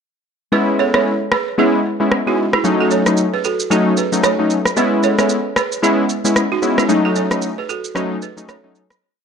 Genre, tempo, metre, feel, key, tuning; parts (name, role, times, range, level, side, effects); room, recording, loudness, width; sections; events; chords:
afrobeats; 113 BPM; 4/4; swing 58% on 16ths; C# minor; A4 = 440 Hz
warm analog keys; accompaniment; 0.5-8.8 s; F#3 to E4; -16 LUFS; left 2 dB; chorus
balafon; riff; 0.5-8.7 s; D#4 to C#5; -20 LUFS; right 8 dB; ping-pong delay
electronic rim click and shaker; drums; 0.9-9.0 s; -20 LUFS; equal; vintage 12-bit sampler grit
light reverb; dark, warm production; -14 LUFS; side -6 dB against mid
0.5-9.0 breakdown
fade-out 6.9-9.0
0.5 C#m7; 2.6 D#m7b5; 4.8 C#m7; 6.9 D#m7b5